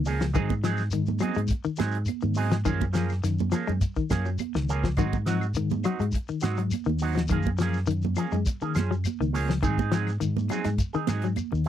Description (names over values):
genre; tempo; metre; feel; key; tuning
afrobeat; 104 BPM; 4/4; straight; Ab mixolydian; A4 = 440 Hz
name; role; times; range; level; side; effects
semi-hollow electric guitar; arpeggios; 0.0-11.7 s; Eb3 to Ab3; -30 LUFS; left 7 dB; tremolo
fingered electric bass; bass; 0.0-11.7 s; Db2 to Ab2; -28 LUFS; equal; none
electric guitar with an envelope filter; stabs; 0.1-11.7 s; F3 to Ab4; -31 LUFS; right 8 dB; lush chorus
damped 70s drum kit; drums; 0.1-11.7 s; hi-hat, kick drum, snare drum; -30 LUFS; equal; none
shekere; percussion; 0.1-11.7 s; none; -36 LUFS; left 1 dB; none
claves; percussion; 0.3-11.5 s; none; -42 LUFS; left 18 dB; none
congas; percussion; 0.4-11.7 s; none; -33 LUFS; right 16 dB; none
room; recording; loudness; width
little or no reverb; dry, close 1970s-style studio recording; -24 LUFS; side -10 dB against mid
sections
0.0-11.7 A section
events
none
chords
0.3 Ab7; 2.7 Gbmaj9; 5.0 Ab7; 7.3 Gbmaj9; 9.6 Ab7